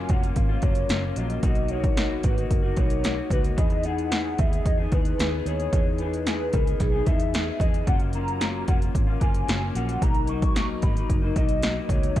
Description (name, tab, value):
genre	indie pop, bedroom pop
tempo	112 BPM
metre	4/4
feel	straight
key	unclear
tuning	A4 = 441 Hz
part	hollow clarinet-like synth lead	melody	0.0-12.2 s	G#4 to C#6	-31 LUFS	equal	analog chorus, tape echo
part	electric guitar through a small old amp	accompaniment	0.0-12.2 s	B2 to G#4	-30 LUFS	left 4 dB	analog chorus, vibrato effect
part	vintage muted fingered electric bass	bass	0.0-12.2 s	E#1 to E2	-29 LUFS	equal	none
part	house drum kit	drums	0.1-12.2 s	hi-hat, kick drum, snare drum	-24 LUFS	equal	none
room	little or no reverb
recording	dark, warm production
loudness	-21 LUFS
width	side -13 dB against mid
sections	0.0-12.2 A section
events	none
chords	0.0 F#maj7; 1.4 Bmaj7; 3.6 Emaj7; 7.9 F#maj7; 10.0 Bmaj7